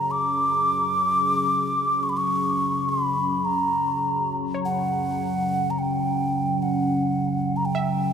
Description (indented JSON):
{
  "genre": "world meditative, free-time meditation music",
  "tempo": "free time",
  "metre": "none",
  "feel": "none",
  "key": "F# phrygian dominant",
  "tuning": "A4 = 440 Hz",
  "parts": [
    { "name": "breathy mellow alto ocarina", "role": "melody", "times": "0.0-8.1 s", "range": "F#5 to D6", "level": "-23 LUFS", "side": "equal", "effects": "tape echo" },
    { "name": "deep dark ambient pad", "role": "drone", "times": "0.0-8.1 s", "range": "F#2 to C#3", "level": "-26 LUFS", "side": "equal", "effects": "chorus, built-in reverb" },
    { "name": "analog pluck", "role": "texture", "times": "0.0-8.1 s", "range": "C#5 to E5", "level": "-35 LUFS", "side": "right 2 dB", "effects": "chorus" }
  ],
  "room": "wet huge ambient reverb, RT60 4.5 s",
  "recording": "none",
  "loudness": "-21 LUFS",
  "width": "side -7 dB against mid",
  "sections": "0.0-8.1 A section",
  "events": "none",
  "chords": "none"
}